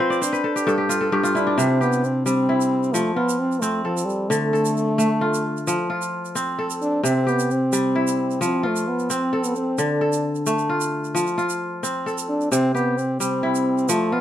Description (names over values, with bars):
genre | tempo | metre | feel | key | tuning
west african traditional, West African string and xylophone music | 88 BPM (dotted quarters) | 12/8 | straight | F lydian | A4 = 441 Hz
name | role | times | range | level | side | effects
mellow French horn | melody | 0.0-14.2 s | F3 to F4 | -22 LUFS | equal | none
kora | arpeggios | 0.0-14.2 s | G2 to E5 | -22 LUFS | left 1 dB | none
tube shaker | percussion | 0.1-14.0 s | none | -30 LUFS | right 9 dB | none
room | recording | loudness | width
light reverb | close, detailed microphones | -19 LUFS | side -11 dB against mid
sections
0.0-1.6 A section; 1.6-14.2 B section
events
kora fill 0.0-1.6; French horn solo 0.0-1.6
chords
0.2 N.C.; 1.6 C; 2.9 F; 4.3 Dm; 5.7 F; 7.0 C; 8.4 F; 9.8 Dm; 11.1 F; 12.5 C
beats
0.22 0.90 | 1.58 2.26 2.94 3.63 | 4.31 4.99 5.67 6.36 | 7.04 7.72 8.41 9.09 | 9.78 10.46 11.15 11.83 | 12.52 13.20 13.89